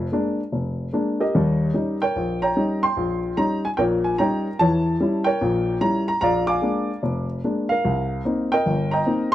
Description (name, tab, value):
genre	solo jazz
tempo	147 BPM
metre	4/4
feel	swing 65% on 8ths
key	unclear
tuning	A4 = 443 Hz
part	warm baby grand piano	solo	0.0-9.3 s	F1 to D6	-20 LUFS	equal	none
room	studio reverb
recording	dry, close 1970s-style studio recording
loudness	-20 LUFS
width	side -13 dB against mid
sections	0.0-9.3 A section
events	none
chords	0.0 Bb7; 1.3 Eb7; 4.6 Edim7; 6.2 Bb7; 7.8 Cm7